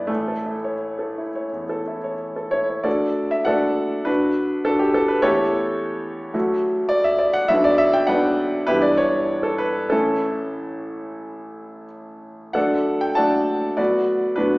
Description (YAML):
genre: classical, romantic character piece for solo piano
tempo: 82-110 BPM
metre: 4/4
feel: rubato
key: D major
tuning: A4 = 440 Hz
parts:
  - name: clear concert grand piano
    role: solo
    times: 0.0-14.6 s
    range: G1 to A5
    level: -19 LUFS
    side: equal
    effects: none
room: wet recital hall reverb, RT60 1.4 s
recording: recorded in a church or concert hall, small speaker sound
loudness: -18 LUFS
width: side -23 dB against mid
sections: 0.0-2.9 A section; 2.9-14.6 B section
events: none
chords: 0.1 A; 2.9 D; 5.2 A7/E; 6.3 D; 7.5 Bm; 8.7 Em7/G; 9.9 A; 12.5 D; 13.8 Bm/D